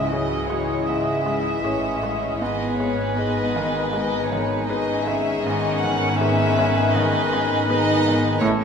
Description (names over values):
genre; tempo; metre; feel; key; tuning
cinematic, emotional film score for orchestra; 79 BPM; 4/4; rubato; unclear; A4 = 438 Hz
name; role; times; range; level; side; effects
warm chamber violin section; melody; 0.0-8.5 s; C#5 to F#5; -26 LUFS; left 2 dB; none
dark chamber violin section; second line; 0.0-8.5 s; D#4 to B4; -30 LUFS; equal; none
mellow hollow small flute group; second line; 0.0-8.6 s; G#5 to A5; -30 LUFS; left 1 dB; none
warm clarinet; second line; 0.0-8.6 s; D#4 to E4; -31 LUFS; left 3 dB; none
warm cor anglais; second line; 0.0-8.6 s; B4 to D#5; -29 LUFS; right 3 dB; none
felt-muted upright piano; accompaniment; 0.0-8.6 s; C#2 to C#5; -27 LUFS; left 1 dB; none
warm chamber viola section; accompaniment; 0.0-8.5 s; F#3 to C#4; -29 LUFS; left 1 dB; none
warm French horn section; sustained chords; 0.0-8.6 s; B2 to E4; -30 LUFS; left 5 dB; none
dark symphonic double bass section; bass; 0.0-8.5 s; G#1 to C#2; -29 LUFS; right 2 dB; none
rich symphonic cello section; bass; 0.0-8.5 s; G#2 to C#3; -31 LUFS; right 4 dB; none
room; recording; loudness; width
wet recital hall reverb, RT60 1.8 s; recorded in a church or concert hall; -19 LUFS; side -6 dB against mid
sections
0.0-8.6 A section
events
none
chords
0.0 C#madd9; 2.4 G#m